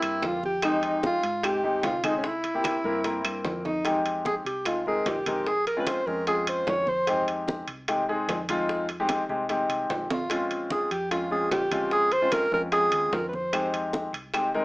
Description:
Afro-Cuban jazz; 149 BPM; 4/4; straight; F minor; A4 = 441 Hz
mellow alto saxophone; melody; 0.0-7.3, 10.1-13.7 s; Db4 to Db5; -26 LUFS; equal
warm baby grand piano; accompaniment; 0.0-14.6 s; Ab3 to Bb4; -28 LUFS; left 1 dB
hollow-body short-scale fingered electric bass; bass; 0.0-14.6 s; Bb1 to Ab2; -41 LUFS; equal
bongos; percussion; 0.0-14.5 s; -35 LUFS; left 1 dB
claves; percussion; 0.0-3.5, 13.5-14.5 s; -35 LUFS; right 2 dB
congas; percussion; 0.0-14.6 s; -37 LUFS; equal
timbales; percussion; 0.0-14.5 s; -34 LUFS; right 2 dB
moderate studio reverb, RT60 0.6 s; small speaker sound; -24 LUFS; side -22 dB against mid
0.0-3.9 A section; 3.9-14.6 A section
drum fill 3.7, 10.1
0.0 C7; 0.6 Fm7; 2.2 C7; 3.9 Fm7; 5.5 Bbm7; 7.1 Fm7; 10.3 Bbm7; 13.5 Fm7

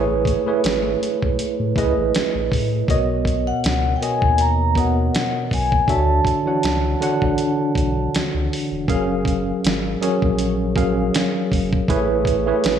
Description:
R&B, neo-soul; 80 BPM; 4/4; swing 53% on 16ths; A4 = 440 Hz
tine electric piano; accompaniment; 0.0-12.8 s; B2 to A#5; -20 LUFS; right 1 dB; overdrive, fast stereo tremolo
warm sub bass; bass; 0.0-12.8 s; E1 to A2; -23 LUFS; equal
dusty soul sampler-style drum kit; drums; 0.3-12.8 s; hi-hat, kick drum, snare drum; -22 LUFS; equal
vibraphone with soft mallets; melody; 2.9-8.1 s; D#5 to A#5; -22 LUFS; left 1 dB
light reverb; studio reverb; -17 LUFS; side -8 dB against mid
0.0-2.9 A section; 2.9-12.8 B section
0.0 Amaj9; 2.9 Bmaj9; 5.9 Dmaj9; 8.9 F#maj9; 11.9 Amaj9

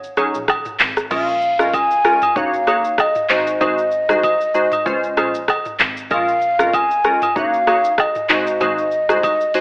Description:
afrobeats; 96 BPM; 4/4; swing 55% on 16ths; A4 = 440 Hz
mellow hollow concert flute; melody; 0.0-9.6 s; Db5 to Ab5; -17 LUFS; equal; tape echo
rich double bass; bass; 0.0-9.4 s; Gb1 to Db2; -34 LUFS; equal
afro-pop drum kit; drums; 0.0-9.6 s; crash cymbal, handclaps, hi-hat, kick drum, rim click, shaker, toms; -19 LUFS; equal
glassy wavetable pluck; accompaniment; 0.2-9.6 s; Gb3 to Db5; -20 LUFS; equal; chorus
agogo bells and woodblock; percussion; 0.2-9.4 s; -22 LUFS; right 1 dB
light reverb; telephone sound; -14 LUFS; side -24 dB against mid
0.0-1.1 A section; 1.1-9.6 B section
0.0 Ab7sus4; 1.1 Bbm7; 2.4 Gb6; 3.3 Ab7; 4.9 Dbmaj7; 6.1 Bbm7; 7.4 Gb6; 8.3 Ab7

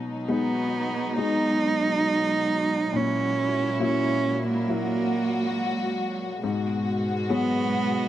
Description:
pop; 68 BPM; 4/4; straight; B major; A4 = 440 Hz
clear upright piano; accompaniment; 0.0-8.1 s; G#2 to E4; -29 LUFS; left 4 dB
rich studio string section; sustained chords; 0.0-8.1 s; G#2 to F#4; -28 LUFS; equal
rich cello; melody; 0.3-8.1 s; A#3 to D#4; -25 LUFS; right 3 dB
little or no reverb; dry, close 1970s-style studio recording; -23 LUFS; side -12 dB against mid
0.0-8.1 A section
0.0 B6; 2.9 F#7/A#; 6.4 G#m7

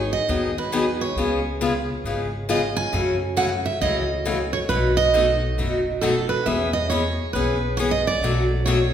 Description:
acoustic string swing (jazz manouche); 136 BPM; 4/4; swing 62% on 8ths; E major; A4 = 438 Hz
picked steel-string acoustic guitar; melody; 0.0-8.9 s; A4 to G#5; -23 LUFS; right 4 dB
upright bass; bass; 0.0-8.9 s; F#1 to F#2; -27 LUFS; equal
picked steel-string acoustic guitar; accompaniment; 0.3-8.8 s; B2 to G#4; -23 LUFS; left 2 dB
wet recital hall reverb, RT60 1.6 s; recorded in a church or concert hall; -20 LUFS; side -9 dB against mid
0.0-8.9 A section
0.0 G#m7; 1.2 C#7; 2.9 F#m7; 4.7 B7; 6.5 E6; 8.2 Bm7

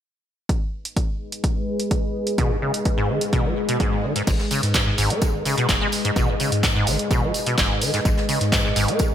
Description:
acid house; 127 BPM; 4/4; straight; G# minor; A4 = 438 Hz
dark analog pad; sustained chords; 1.3-9.1 s; G#3 to D#5; -27 LUFS; left 1 dB; chorus, sidechain pumping
electronic kick drum; drums; 0.5-9.1 s; -23 LUFS; equal
punchy analog drum machine; drums; 0.5-9.1 s; crash cymbal, handclaps, hi-hat; -25 LUFS; right 1 dB; gated reverb
acid bass, saw; riff; 2.4-9.0 s; F#2 to B3; -23 LUFS; equal; tube saturation, ensemble chorus, digital delay
swell; sound effects; 3.6-4.3 s; -31 LUFS; left 1 dB
saturated sub bass; bass; 4.3-9.1 s; F#1 to G#2; -26 LUFS; equal; tube saturation, sidechain pumping
jazz brush drum kit; drums; 4.3-9.1 s; hi-hat, snare drum, tambourine; -32 LUFS; equal; sidechain pumping on hats, high-pass filter on hats, high-pass filter on snare, sidechain pumping on perc, high-pass filter on perc, high-pass filter on room, gated reverb
moderate lush hall reverb, RT60 1.6 s, digital ambience; bright 1980s-style digital production; -19 LUFS; side -10 dB against mid
0.5-4.3 A section; 4.3-9.1 B section
swell 3.6-4.3
0.5 G#m

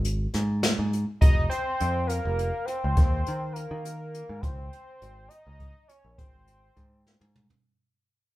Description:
progressive instrumental, band music in an uneven meter; 205 BPM (eighths); 11/8; straight; A4 = 440 Hz
picked electric bass; bass; 0.0-7.5 s; F1 to Eb3; -29 LUFS; equal
jazz brush drum kit; drums; 0.0-7.6 s; hi-hat, kick drum, snare drum, toms; -23 LUFS; equal
lead with added fifth; melody; 1.2-7.3 s; Bb4 to Eb5; -31 LUFS; equal; chorus
light reverb; band playing live in one room; -24 LUFS; side -17 dB against mid
0.0-7.6 A section
fade-out 0.0-7.6; drum fill 7.1-7.6
0.0 N.C.; 1.2 F5; 3.0 Eb5; 4.4 Db5; 6.2 Ab

